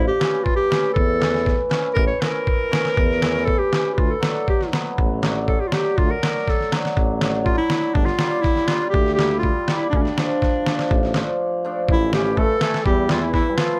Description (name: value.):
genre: klezmer.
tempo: 121 BPM.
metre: 4/4.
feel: straight.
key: D harmonic minor.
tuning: A4 = 440 Hz.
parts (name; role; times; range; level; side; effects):
clear clarinet; melody; 0.0-13.8 s; C#4 to C#5; -24 LUFS; equal; none.
warm tuba; bass; 0.0-13.4 s; G1 to E2; -27 LUFS; equal; none.
cimbalom; accompaniment; 0.2-13.8 s; E3 to E4; -27 LUFS; equal; none.
trip hop sampler-style drum kit; drums; 0.2-13.7 s; kick drum, snare drum; -24 LUFS; equal; none.
brilliant trombone; second line; 11.9-13.8 s; E3 to A3; -29 LUFS; equal; none.
room: light reverb.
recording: none.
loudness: -20 LUFS.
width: mono.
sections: 0.0-11.9 A section; 11.9-13.8 B section.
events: speeding up 0.0-13.8; break 11.4-11.9.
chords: 0.0 A; 4.0 D; 8.0 Gm; 9.9 Dm; 11.9 A5.